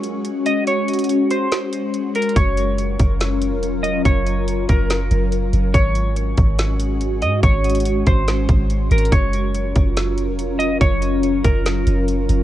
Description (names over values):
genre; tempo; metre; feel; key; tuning
hip hop, atmospheric cloud-rap; 142 BPM; 4/4; half-time; Gb lydian; A4 = 441 Hz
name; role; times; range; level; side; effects
clean electric guitar; melody; 0.0-12.0 s; Bb4 to Eb5; -24 LUFS; right 1 dB; analog chorus, low-pass filter, tape echo
glassy FM pad; sustained chords; 0.0-12.4 s; Gb3 to Bb4; -22 LUFS; left 2 dB; ensemble chorus, built-in reverb, phaser
trap drum kit; drums; 0.0-12.4 s; hi-hat, kick drum, snare drum; -20 LUFS; equal; none
soft 808-style bass; bass; 2.4-12.4 s; F1 to Ab2; -19 LUFS; equal; none
room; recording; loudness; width
little or no reverb; worn, warbling old tape, cassette tape, warbly pitch drift; -16 LUFS; side -13 dB against mid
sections
0.0-12.4 A section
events
break 0.0-2.4; kick muted 0.7-2.4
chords
0.0 Ab7sus4; 2.4 Gbmaj7; 5.7 Ab7sus4; 9.1 Gbmaj7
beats
0.25 | 0.67 1.09 1.51 1.94 | 2.36 2.78 3.21 3.63 | 4.05 4.47 4.90 5.32 | 5.74 6.16 6.59 7.01 | 7.43 7.85 8.28 8.70 | 9.12 9.54 9.97 10.39 | 10.81 11.23 11.66 12.08